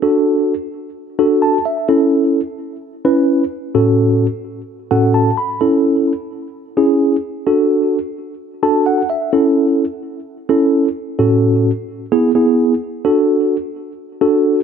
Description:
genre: pop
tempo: 129 BPM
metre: 4/4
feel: straight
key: unclear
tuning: A4 = 440 Hz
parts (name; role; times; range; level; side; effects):
- mellow tine electric piano; solo; 0.0-14.6 s; A2 to B5; -14 LUFS; equal; fast stereo tremolo, digital delay
room: moderate studio reverb, RT60 0.6 s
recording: none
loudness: -13 LUFS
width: side -7 dB against mid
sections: 0.0-13.0 A section; 13.0-14.6 B section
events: tine electric piano fill 1.2-1.9, 4.7-5.6, 8.4-9.3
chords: 0.0 D; 1.9 A; 3.7 F#m/A; 5.6 Amaj7; 7.5 D; 9.3 A; 11.2 F#m/A; 12.1 E; 13.0 D

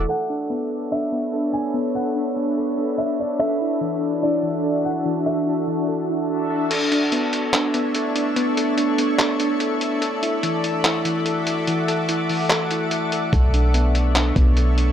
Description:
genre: hip hop, atmospheric cloud-rap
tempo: 145 BPM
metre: 4/4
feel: half-time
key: B minor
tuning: A4 = 440 Hz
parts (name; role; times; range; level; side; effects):
- shimmering ambient pad; sustained chords; 0.0-14.9 s; D4 to D6; -24 LUFS; equal; chorus, built-in reverb, sidechain pumping
- soft electric-piano-like synth keys; arpeggios; 0.0-14.9 s; E3 to A4; -24 LUFS; equal; chorus, tape echo
- clean 808-style bass; bass; 0.0-0.1, 13.3-14.9 s; B1; -18 LUFS; equal; none
- drifting glass-harmonics texture; texture; 0.0-14.9 s; A3 to E5; -31 LUFS; equal; chorus, built-in reverb
- felt-muted upright piano; melody; 0.1-5.8 s; D5 to G#5; -27 LUFS; right 1 dB; tape echo
- trip hop sampler-style drum kit; drums; 6.7-14.9 s; crash cymbal, handclaps, hi-hat, kick drum; -22 LUFS; equal; none
room: digital ambience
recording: dry, gritty hardware recording, low-pass filter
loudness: -19 LUFS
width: side -9 dB against mid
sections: 0.1-6.7 A section; 6.7-14.9 B section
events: filter sweep 0.1-6.7; kick muted 6.7-13.3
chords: 0.1 Bm11; 3.4 E9sus4; 6.7 Bm11; 10.0 E9sus4; 13.3 Bm11

